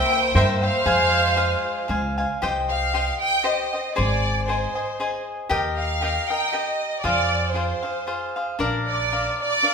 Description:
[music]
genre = mexican folk, mariachi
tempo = 117 BPM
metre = 3/4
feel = swing 54% on 8ths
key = C minor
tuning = A4 = 439 Hz
[part]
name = clear studio violin section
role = melody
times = 0.0-9.7 s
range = C5 to G5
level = -23 LUFS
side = right 1 dB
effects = none
[part]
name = clear trumpet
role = second line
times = 0.0-1.9 s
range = C5 to E5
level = -26 LUFS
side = right 3 dB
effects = none
[part]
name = cavaquinho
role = accompaniment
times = 0.0-9.7 s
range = D4 to Ab5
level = -24 LUFS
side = left 2 dB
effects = none
[part]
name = rich studio violin section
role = sustained chords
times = 0.0-2.4 s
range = Ab3 to C5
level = -28 LUFS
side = equal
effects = none
[part]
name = upright bass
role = bass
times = 0.3-9.3 s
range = Ab1 to G2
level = -25 LUFS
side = equal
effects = none
[sound]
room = wet recital hall reverb, RT60 1.4 s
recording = minimal, uncompressed stereo recording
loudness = -20 LUFS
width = side -6 dB against mid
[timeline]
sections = 0.0-2.4 A section; 2.4-9.7 B section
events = none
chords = 0.0 C7; 0.9 Fm; 2.4 Cm; 4.0 Ab; 5.5 Eb; 7.0 Fm; 8.6 Bb

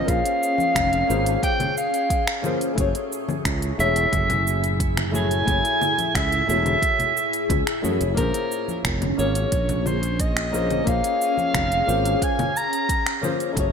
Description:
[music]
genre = sunset chillout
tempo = 89 BPM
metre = 4/4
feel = straight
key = unclear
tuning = A4 = 440 Hz
[part]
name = mellow soprano saxophone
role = melody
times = 0.0-13.2 s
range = Bb4 to Bb5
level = -23 LUFS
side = right 1 dB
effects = digital delay, shimmer reverb
[part]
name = flamenco guitar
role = accompaniment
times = 0.0-13.7 s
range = A3 to Db5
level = -29 LUFS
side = moving between left 5 dB and right 1 dB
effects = auto-pan, digital delay, shimmer reverb
[part]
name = ethereal airy pad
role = sustained chords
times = 0.0-13.7 s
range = A2 to Ab4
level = -28 LUFS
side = left 2 dB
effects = ensemble chorus, built-in reverb, phaser, shimmer reverb
[part]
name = sustaining fretless electric bass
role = bass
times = 0.1-13.7 s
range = Fb1 to Gb2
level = -25 LUFS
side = right 1 dB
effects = tube saturation, ensemble chorus
[part]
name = deep house drum kit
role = drums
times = 0.1-13.7 s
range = cabasa, congas, finger snaps, hi-hat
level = -28 LUFS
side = left 2 dB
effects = gated reverb
[part]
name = electronic kick drum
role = drums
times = 0.1-13.7 s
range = none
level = -26 LUFS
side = right 1 dB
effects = none
[part]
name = congas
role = percussion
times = 0.6-13.4 s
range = none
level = -34 LUFS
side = left 2 dB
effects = none
[sound]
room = moderate plate reverb, RT60 1.8 s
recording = bright 1980s-style digital production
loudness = -19 LUFS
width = side -6 dB against mid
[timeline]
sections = 0.0-13.7 A section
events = none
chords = 0.0 Bbm9; 2.8 Gbm9; 8.2 Bbm9

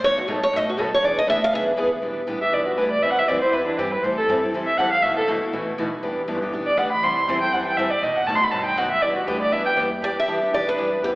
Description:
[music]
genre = acoustic string swing (jazz manouche)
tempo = 240 BPM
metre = 4/4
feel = swing 56% on 8ths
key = E minor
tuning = A4 = 440 Hz
[part]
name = picked steel-string acoustic guitar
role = melody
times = 0.0-1.6, 10.0-11.1 s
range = F#4 to F5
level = -21 LUFS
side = equal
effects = none
[part]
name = picked steel-string acoustic guitar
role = accompaniment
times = 0.0-11.2 s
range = B2 to B4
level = -27 LUFS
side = left 1 dB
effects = none
[part]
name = picked steel-string acoustic guitar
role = accompaniment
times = 0.0-11.2 s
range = B2 to B4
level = -30 LUFS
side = right 1 dB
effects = none
[part]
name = upright bass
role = bass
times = 0.0-11.2 s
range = E1 to B2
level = -35 LUFS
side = equal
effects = none
[part]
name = warm violin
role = second line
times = 2.4-11.2 s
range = B3 to C6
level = -20 LUFS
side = equal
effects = none
[sound]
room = wet scoring stage reverb, RT60 2.0 s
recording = recorded in a church or concert hall, AM radio sound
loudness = -19 LUFS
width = side -21 dB against mid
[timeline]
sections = 0.0-2.0 A section; 2.0-10.0 A section; 10.0-11.2 B section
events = steel-string acoustic guitar solo 0.0-2.0; violin solo 2.0-10.0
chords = 0.0 B7; 1.0 E7; 2.0 Em7; 3.0 Cmaj7/E; 4.0 Am7; 5.0 B7sus4; 6.0 Em7; 7.0 Am7; 8.0 B7; 9.0 Em9; 10.0 Em7

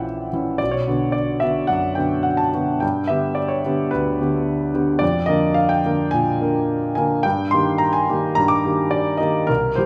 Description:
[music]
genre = classical, romantic character piece for solo piano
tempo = 108 BPM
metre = 4/4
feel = rubato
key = Eb major from 5.0 s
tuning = A4 = 440 Hz
[part]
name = warm concert grand piano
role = solo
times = 0.0-9.9 s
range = A#1 to D6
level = -20 LUFS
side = equal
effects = none
[sound]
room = wet recital hall reverb, RT60 1.5 s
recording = none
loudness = -20 LUFS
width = mono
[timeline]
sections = 0.0-9.9 A section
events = none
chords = 0.0 A#dim; 0.6 Bm; 2.8 G; 5.0 Bb7/F; 7.2 Eb/G

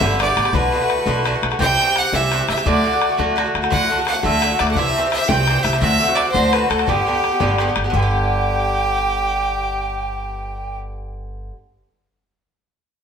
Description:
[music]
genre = celtic folk, Celtic jig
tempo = 114 BPM (dotted quarters)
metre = 6/8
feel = straight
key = G major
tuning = A4 = 440 Hz
[part]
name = bright fiddle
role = melody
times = 0.0-10.8 s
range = G4 to G5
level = -21 LUFS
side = right 2 dB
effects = none
[part]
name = bowl-back mandolin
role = second line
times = 0.0-11.5 s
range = G4 to G5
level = -28 LUFS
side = right 3 dB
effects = none
[part]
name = mellow wooden whistle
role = second line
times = 0.0-10.8 s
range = G5 to G6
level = -26 LUFS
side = right 1 dB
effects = none
[part]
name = Irish bouzouki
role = accompaniment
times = 0.0-11.6 s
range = G2 to G4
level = -21 LUFS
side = equal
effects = none
[part]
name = upright bass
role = bass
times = 0.0-11.5 s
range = G1 to D2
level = -23 LUFS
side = equal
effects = none
[part]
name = bodhran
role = percussion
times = 0.0-8.1 s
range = none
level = -24 LUFS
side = left 4 dB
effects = none
[sound]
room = wet stone room reverb, RT60 1.2 s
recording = band playing live in one room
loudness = -16 LUFS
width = side -7 dB against mid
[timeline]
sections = 0.0-7.9 A section; 7.9-10.0 B section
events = none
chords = 0.0 G; 0.5 Bm7; 1.6 C; 2.7 D; 4.8 C; 5.8 D7; 6.9 G

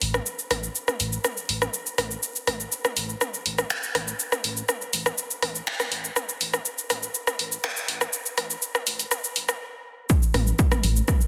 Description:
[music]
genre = melodic techno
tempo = 122 BPM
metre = 4/4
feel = straight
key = unclear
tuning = A4 = 437 Hz
[part]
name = swelling detuned saw bass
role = bass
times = 0.0-11.0 s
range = A1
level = -32 LUFS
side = equal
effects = sidechain pumping
[part]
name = deep house drum kit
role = drums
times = 0.0-11.3 s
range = finger snaps, hi-hat, rim click, shaker, toms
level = -27 LUFS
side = equal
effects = overdrive, sidechain pumping on perc, high-pass filter on perc, studio reverb, sidechain pumping on hats, high-pass filter on hats, soft clipping on snare, high-pass filter on snare, sidechain pumping on toms, high-pass filter on toms
[part]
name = electronic kick drum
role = drums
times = 10.1-11.2 s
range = none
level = -23 LUFS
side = equal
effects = studio reverb
[sound]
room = moderate lush hall reverb, RT60 2.4 s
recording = dense, heavily limited modern master, high-pass filter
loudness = -26 LUFS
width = mono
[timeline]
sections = 0.0-10.1 A section; 10.1-11.3 B section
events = build-up 0.0-10.1; stop 9.6-10.1; drop 10.1-11.3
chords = none

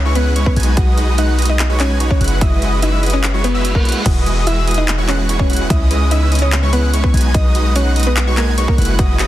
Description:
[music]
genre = future bass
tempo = 146 BPM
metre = 4/4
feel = half-time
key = B major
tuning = A4 = 440 Hz
[part]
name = mallet-like synth pluck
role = melody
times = 0.0-9.3 s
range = A#3 to F#5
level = -22 LUFS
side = equal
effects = chorus, sidechain pumping, dub echo
[part]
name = rich studio string section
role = sustained chords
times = 0.0-9.3 s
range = C#3 to B4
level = -30 LUFS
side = equal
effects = none
[part]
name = warm 808-style bass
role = bass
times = 0.0-9.3 s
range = E1 to C#2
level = -16 LUFS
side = equal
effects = sidechain pumping
[part]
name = airy dreamy lead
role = arpeggios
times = 0.1-9.3 s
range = C#6 to G#6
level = -26 LUFS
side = equal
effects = chorus, sidechain pumping, tape echo
[part]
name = supersaw chords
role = riff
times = 0.1-9.3 s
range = G#3 to G#5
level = -21 LUFS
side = right 1 dB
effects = sidechain pumping
[part]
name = big-room dance drum kit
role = drums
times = 0.2-9.3 s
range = crash cymbal, handclaps, hi-hat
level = -23 LUFS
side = equal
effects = overdrive, studio reverb
[part]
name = electronic kick drum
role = drums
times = 0.5-9.1 s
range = none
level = -15 LUFS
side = equal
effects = overdrive, studio reverb
[part]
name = reverse cymbal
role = sound effects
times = 3.5-4.1 s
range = none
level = -28 LUFS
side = right 3 dB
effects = none
[sound]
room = little or no reverb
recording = dense, heavily limited modern master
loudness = -12 LUFS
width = side -14 dB against mid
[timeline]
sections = 0.0-9.3 A section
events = reverse cymbal 3.5-4.1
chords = 0.0 C#m7; 0.6 B6; 2.2 F#13sus4; 4.1 Emaj9; 5.7 C#m9; 7.1 B6

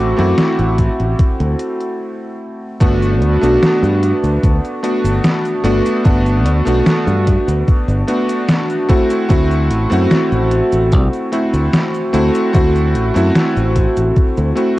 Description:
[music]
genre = vaporwave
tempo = 74 BPM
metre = 4/4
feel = straight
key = G major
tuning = A4 = 440 Hz
[part]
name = bright electric grand piano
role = accompaniment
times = 0.0-14.8 s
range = A3 to F#4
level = -16 LUFS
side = equal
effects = wide subtle chorus, tape echo
[part]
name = warbly tape-like pad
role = sustained chords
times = 0.0-2.0 s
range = F#4 to D6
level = -29 LUFS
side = left 3 dB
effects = chorus, built-in reverb
[part]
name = modern bright fingered electric bass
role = bass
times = 0.0-14.5 s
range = G1 to G2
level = -16 LUFS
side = equal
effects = none
[part]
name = detuned 8-bit digital drum machine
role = drums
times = 0.2-14.7 s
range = cabasa, hi-hat, snare drum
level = -18 LUFS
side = equal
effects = overdrive, studio reverb
[part]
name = electronic kick drum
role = drums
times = 0.8-14.3 s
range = none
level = -13 LUFS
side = equal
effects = overdrive, studio reverb
[sound]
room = moderate concert hall reverb, RT60 1.9 s, digital ambience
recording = worn, warbling old tape, cassette tape, warbly pitch drift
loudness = -12 LUFS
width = side -17 dB against mid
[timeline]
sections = 0.0-2.8 A section; 2.8-14.8 B section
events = stop 2.0-2.8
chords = 0.0 D9; 2.8 Gmaj7; 8.9 D9

